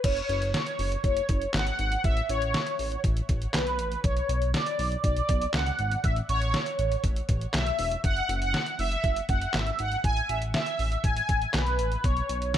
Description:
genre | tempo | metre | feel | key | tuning
synth-pop | 120 BPM | 4/4 | straight | unclear | A4 = 441 Hz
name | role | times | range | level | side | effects
mellow synth brass | melody | 0.0-12.6 s | B4 to G#5 | -28 LUFS | equal | chorus, phaser, tape echo
chorused synth bass | bass | 0.0-12.6 s | E1 to C#2 | -30 LUFS | equal | none
detuned 8-bit digital drum machine | drums | 0.0-12.6 s | crash cymbal, handclaps, hi-hat, kick drum, snare drum | -29 LUFS | equal | none
room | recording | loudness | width
light reverb | none | -24 LUFS | side -10 dB against mid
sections
0.0-12.6 A section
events
none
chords
0.0 F#5; 2.0 A; 4.0 Bm; 6.0 A; 8.0 Eadd9/F#; 10.0 A5; 12.0 G#madd11 (rootless)

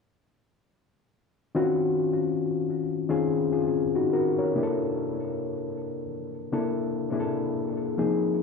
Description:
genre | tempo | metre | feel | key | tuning
R&B | 70 BPM | 4/4 | swing 60% on 16ths | unclear | A4 = 442 Hz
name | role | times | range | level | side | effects
reed electric piano | solo | 1.5-8.4 s | C3 to Db5 | -24 LUFS | left 3 dB | cassette tape, tape echo
room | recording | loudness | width
wet studio reverb, RT60 0.6 s | home recording on cassette, studio reverb | -25 LUFS | side -4 dB against mid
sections
1.5-8.4 A section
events
none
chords
1.5 Ebm9; 4.5 C7

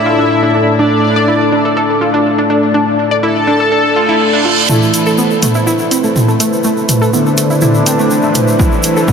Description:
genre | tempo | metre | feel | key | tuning
melodic techno | 123 BPM | 4/4 | straight | A minor | A4 = 440 Hz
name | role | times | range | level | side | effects
analog synth brass | melody | 0.0-9.1 s | D3 to A4 | -16 LUFS | left 1 dB | chorus, sidechain pumping, ping-pong delay
soft supersaw | second line | 0.0-4.6 s | D5 to A5 | -21 LUFS | left 1 dB | phaser, sidechain pumping, ping-pong delay
warm analog pad | sustained chords | 0.0-9.1 s | A3 to A5 | -16 LUFS | equal | chorus, sidechain pumping
overtone-sweeping drone | drone | 0.0-4.7 s | A2 | -23 LUFS | equal | chorus, built-in reverb, phaser, sidechain pumping
analog pluck | arpeggios | 0.1-9.1 s | A3 to D5 | -15 LUFS | right 1 dB | chorus, sidechain pumping, ping-pong delay
reverse cymbal and riser | sound effects | 3.9-9.1 s | none | -21 LUFS | right 3 dB | none
punchy analog drum machine | drums | 4.7-9.1 s | hi-hat, toms | -16 LUFS | equal | none
egg shaker | percussion | 4.7-9.1 s | none | -22 LUFS | right 2 dB | none
electronic kick drum | drums | 8.6-9.1 s | none | -12 LUFS | equal | none
room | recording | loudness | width
wet huge ambient reverb, RT60 8.0 s | dreamy mix soaked in reverb | -9 LUFS | side -6 dB against mid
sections
0.0-4.7 A section; 4.7-9.1 B section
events
reverse cymbal 3.9-4.7; build-up 4.7-9.1; riser 4.7-9.1; filter sweep on synth pluck 4.7-9.1; drum fill 8.6-9.1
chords
0.0 Dsus2/A; 4.7 Am

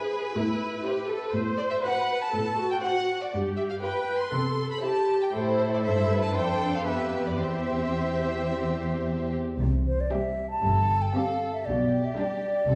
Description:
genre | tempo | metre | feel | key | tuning
quick classical-period movement for symphony orchestra | 108-123 BPM | 4/4 | rubato | C major | A4 = 439 Hz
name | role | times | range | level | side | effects
rich chamber violin section | melody | 0.0-12.8 s | G4 to C6 | -35 LUFS | equal | none
warm symphonic violin section | second line | 0.0-12.6 s | B3 to C5 | -34 LUFS | equal | none
warm symphonic viola section | accompaniment | 0.0-12.6 s | G3 to C5 | -32 LUFS | equal | none
warm chamber cello section | bass | 0.4-12.8 s | E2 to C3 | -32 LUFS | equal | none
rich chamber double bass section | bass | 9.6-12.8 s | G1 to C2 | -32 LUFS | equal | none
mellow silver concert flute | second line | 9.9-12.8 s | C5 to A5 | -29 LUFS | equal | none
room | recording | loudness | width
wet recital hall reverb, RT60 1.6 s | heard from further back in the room | -27 LUFS | mono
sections
0.0-9.6 A section; 9.6-12.8 A section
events
none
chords
0.4 Am; 1.3 Am69; 3.3 G7; 4.3 C; 5.3 Am; 6.3 Dm/F; 6.9 G7/F; 7.4 C/E; 9.6 C5; 11.7 G/B

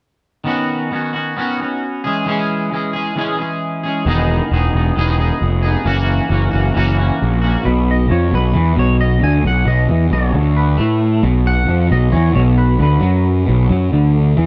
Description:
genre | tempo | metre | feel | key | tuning
rock | 134 BPM | 4/4 | straight | B major | A4 = 439 Hz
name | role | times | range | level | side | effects
twangy electric guitar | riff | 0.4-14.5 s | B2 to G#4 | -20 LUFS | equal | double-tracked
fuzz picked electric bass | bass | 4.1-14.5 s | E1 to A2 | -17 LUFS | equal | overdrive
twangy electric guitar | melody | 7.7-14.1 s | B4 to G#5 | -25 LUFS | equal | subtle chorus, tape echo
room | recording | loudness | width
light reverb | dark, warm production | -16 LUFS | mono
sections
0.5-7.7 A section; 7.7-14.5 B section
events
none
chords
0.5 Badd9; 2.0 C#m; 4.1 Emaj7; 5.9 F#7; 7.7 B5

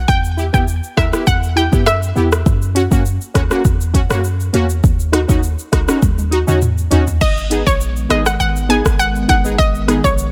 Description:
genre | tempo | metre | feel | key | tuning
dancehall | 101 BPM | 4/4 | straight | unclear | A4 = 440 Hz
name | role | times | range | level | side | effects
warm 808-style bass | bass | 0.0-10.3 s | G#1 to F#2 | -20 LUFS | equal | none
analog pluck | melody | 0.1-2.3, 7.2-10.1 s | C#5 to G#5 | -21 LUFS | equal | chorus
afro-pop drum kit | drums | 0.1-10.3 s | crash cymbal, hi-hat, kick drum, rim click, shaker, toms | -19 LUFS | equal | none
synth brass stab | accompaniment | 0.4-10.0 s | A#3 to A#4 | -21 LUFS | equal | chorus, sidechain pumping
hollow soft pad | sustained chords | 7.2-10.3 s | D#3 to B3 | -27 LUFS | equal | chorus, sidechain pumping
room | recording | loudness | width
little or no reverb | none | -15 LUFS | mono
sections
0.0-7.2 A section; 7.2-10.3 B section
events
drum fill 6.0-7.2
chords
0.1 Em; 2.5 F#; 4.8 D#m7; 7.2 G#m

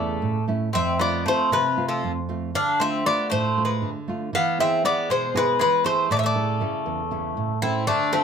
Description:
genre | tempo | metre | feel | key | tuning
greek folk, Greek bouzouki band | 235 BPM (eighths) | 7/8 | straight | unclear | A4 = 438 Hz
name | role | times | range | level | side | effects
Greek bouzouki | melody | 0.0-8.2 s | C4 to F5 | -23 LUFS | left 1 dB | none
Greek bouzouki | second line | 0.0-8.2 s | F3 to D4 | -26 LUFS | left 2 dB | none
nylon-string guitar | accompaniment | 0.0-8.2 s | E2 to A4 | -26 LUFS | right 4 dB | none
room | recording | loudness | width
moderate small room reverb, RT60 0.5 s | minimal, uncompressed stereo recording | -20 LUFS | side -7 dB against mid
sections
0.0-7.9 A section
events
speeding up 0.0-8.2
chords
0.0 A; 0.7 F; 2.5 Dm; 4.3 E; 6.1 A

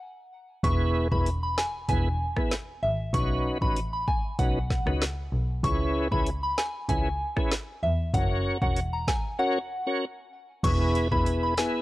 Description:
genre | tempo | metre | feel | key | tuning
dancehall | 96 BPM | 4/4 | straight | E major | A4 = 440 Hz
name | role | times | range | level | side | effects
soft synth bell | melody | 0.6-11.7 s | E5 to C#6 | -31 LUFS | equal | chorus
tonewheel organ | accompaniment | 0.6-11.8 s | B3 to C#5 | -29 LUFS | equal | chorus vibrato, slow rotary speaker
clear double bass | bass | 0.6-11.5 s | E1 to E2 | -28 LUFS | equal | none
afro-pop drum kit | drums | 0.6-11.7 s | crash cymbal, hi-hat, kick drum, rim click, snare drum | -29 LUFS | equal | none
room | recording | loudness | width
little or no reverb | dry, gritty hardware recording | -24 LUFS | side -17 dB against mid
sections
0.6-10.6 A section; 10.6-11.8 B section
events
stop 0.0-0.6; break 9.4-10.6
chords
0.0 N.C.; 0.6 E; 3.1 Badd9; 5.6 C#m7; 8.1 F#; 10.6 E

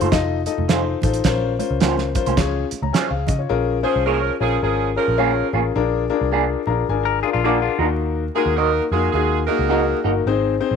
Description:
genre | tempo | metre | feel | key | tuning
uptempo 1960s-style soul | 106 BPM | 4/4 | swing 61% on 8ths | unclear | A4 = 440 Hz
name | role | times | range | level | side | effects
warm upright piano | accompaniment | 0.0-10.8 s | Bb3 to Bb5 | -21 LUFS | left 9 dB | none
electric guitar through a small old amp | stabs | 0.0-10.1 s | A3 to Eb5 | -24 LUFS | right 13 dB | phaser
vintage muted picked electric bass | bass | 0.0-10.8 s | F1 to Db3 | -24 LUFS | equal | none
cloth-damped thuddy drum kit | drums | 0.0-3.4 s | hi-hat, kick drum, snare drum | -21 LUFS | right 3 dB | none
congas | percussion | 0.0-3.4 s | none | -32 LUFS | right 8 dB | none
bright saxophone section | second line | 3.8-10.0 s | F3 to Bb4 | -23 LUFS | right 12 dB | none
semi-hollow electric guitar | riff | 7.1-7.9 s | Bb3 to Bb4 | -23 LUFS | left 11 dB | none
room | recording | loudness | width
light reverb, small room ambience | 1960s-style stereo with parts hard left and right, vinyl crackle | -17 LUFS | side -6 dB against mid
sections
0.0-3.5 A section; 3.5-10.8 B section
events
upright piano fill 6.3-8.0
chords
0.0 F7; 1.3 Bbmadd9; 2.4 Db; 3.5 Bbm7; 5.8 Bb7; 7.7 Ebm

